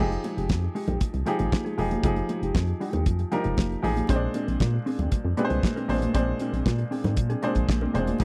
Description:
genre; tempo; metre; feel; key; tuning
disco; 117 BPM; 4/4; straight; F dorian; A4 = 444 Hz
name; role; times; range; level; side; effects
clear baby grand piano; accompaniment; 0.0-8.2 s; Bb2 to C5; -31 LUFS; equal; none
mellow electric guitar; accompaniment; 0.0-8.2 s; Ab3 to Bb4; -34 LUFS; equal; none
solid FM bass; bass; 0.0-8.2 s; E1 to Bb2; -29 LUFS; equal; none
damped 70s drum kit; drums; 0.1-8.2 s; hi-hat, kick drum, snare drum; -28 LUFS; equal; none
congas; percussion; 0.2-8.2 s; none; -35 LUFS; equal; none
room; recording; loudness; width
little or no reverb; dry, close 1970s-style studio recording; -26 LUFS; mono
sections
0.0-8.2 A section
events
none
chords
0.0 Fm9; 4.1 Bb9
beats
0.50 1.01 1.53 | 2.04 2.55 3.06 3.58 | 4.09 4.61 5.12 5.63 | 6.14 6.66 7.17 7.68 | 8.20

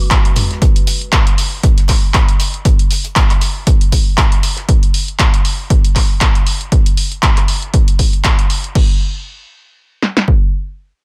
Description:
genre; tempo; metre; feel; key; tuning
acid house; 118 BPM; 4/4; swing 56% on 16ths; G# minor; A4 = 438 Hz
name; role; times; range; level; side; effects
dark analog pad; sustained chords; 0.0-0.6 s; G#3 to B4; -35 LUFS; equal; lush chorus, sidechain pumping
punchy analog drum machine; drums; 0.1-10.4 s; kick drum, snare drum; -14 LUFS; equal; none
punchy analog drum machine; drums; 0.1-8.9 s; crash cymbal, handclaps, hi-hat, toms; -20 LUFS; equal; none
damped 70s drum kit; drums; 0.4-4.7 s; hi-hat, snare drum; -32 LUFS; equal; high-pass filter on hats, high-pass filter on snare, high-pass filter on room
room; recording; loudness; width
little or no reverb; none; -13 LUFS; mono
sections
0.0-8.8 A section; 8.8-11.0 B section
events
none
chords
0.0 G#m7; 0.6 N.C.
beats
0.11 | 0.62 1.13 1.64 2.14 | 2.65 3.16 3.67 4.18 | 4.68 5.19 5.70 6.21 | 6.72 7.23 7.74 8.24 | 8.75 9.26 9.77 10.28

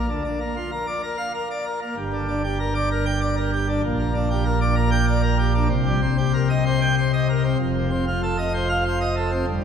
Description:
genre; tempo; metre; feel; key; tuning
classical, organ toccata; 96 BPM; 3/4; straight; unclear; A4 = 442 Hz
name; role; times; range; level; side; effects
pipe organ, plenum; solo; 0.0-9.6 s; F1 to G5; -20 LUFS; equal; none
room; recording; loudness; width
wet church reverb, RT60 3.2 s; recorded in a church or concert hall; -20 LUFS; side -7 dB against mid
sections
0.0-9.6 A section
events
none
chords
0.1 Bb/D; 2.0 Gm; 3.8 Gm/Bb; 5.7 Cm7; 7.6 F7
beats
| 0.10 0.73 1.35 | 1.97 2.59 3.22 | 3.84 4.46 5.08 | 5.71 6.34 6.97 | 7.60 8.22 8.86 | 9.48

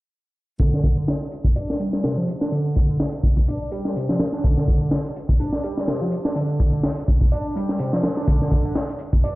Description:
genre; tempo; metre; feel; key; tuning
breakbeat, breaks; 125 BPM; 4/4; swing 56% on 16ths; D minor; A4 = 441 Hz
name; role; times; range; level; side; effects
overdriven synth lead; riff; 0.6-9.4 s; C3 to D4; -24 LUFS; equal; distortion, analog chorus, cassette tape, tape echo
crunchy breakbeat drum kit; drums; 0.6-9.4 s; hi-hat, kick drum, snare drum; -20 LUFS; equal; none
shaker; drums; 0.6-9.3 s; none; barely audible; none; none
room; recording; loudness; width
light reverb, small room ambience; played on a big sound system in a bare room, large studio reverb, low-pass filter; -19 LUFS; side -20 dB against mid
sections
0.6-9.4 A section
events
filter sweep on analog synth lead 0.6-9.4; filter sweep 0.6-9.4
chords
none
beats
| 0.60 1.08 1.56 2.04 | 2.52 3.00 3.48 3.96 | 4.44 4.92 5.40 5.88 | 6.36 6.84 7.32 7.80 | 8.28 8.76 9.24

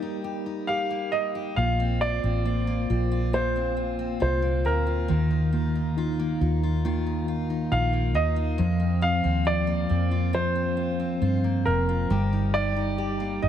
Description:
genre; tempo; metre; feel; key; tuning
pop ballad; 68 BPM; 4/4; straight; Bb major; A4 = 441 Hz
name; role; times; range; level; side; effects
clear concert grand piano; melody; 0.0-13.5 s; Bb4 to F5; -28 LUFS; right 1 dB; none
mellow tine electric piano; accompaniment; 0.0-13.5 s; Eb3 to Bb4; -28 LUFS; equal; medium stereo tremolo
picked steel-string acoustic guitar; arpeggios; 0.0-13.5 s; F2 to G4; -34 LUFS; left 5 dB; none
vintage muted fingered electric bass; bass; 1.6-13.5 s; F1 to G2; -26 LUFS; equal; none
room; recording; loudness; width
light reverb, small room ambience; none; -23 LUFS; side -10 dB against mid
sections
0.0-13.5 A section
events
none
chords
0.0 Eb/G; 1.6 Bbsus2; 5.1 Ebsus2; 8.6 Bbsus2; 12.1 Eb/G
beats
0.69 | 1.58 2.46 3.34 4.22 | 5.10 5.98 6.85 7.72 | 8.59 9.47 10.34 11.21 | 12.10 12.98

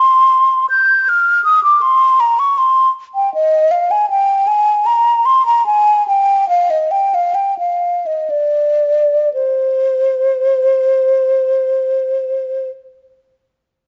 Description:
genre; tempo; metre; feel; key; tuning
classical, baroque-style fantasia for unaccompanied flute; 56-82 BPM; 3/4; rubato; C minor; A4 = 441 Hz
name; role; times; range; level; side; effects
mellow hollow concert flute; solo; 0.0-12.7 s; C5 to G6; -14 LUFS; equal; none
room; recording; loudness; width
moderate stone room reverb, RT60 1.4 s; nothing above 7.6 kHz; -14 LUFS; mono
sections
0.0-9.4 A section; 9.4-12.3 B section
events
slowing down 2.9-9.4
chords
none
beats
0.33 1.08 | 1.82 2.56 3.33 | 4.09 4.87 5.66 | 6.49 7.36 8.31 | 9.35 10.35 11.34

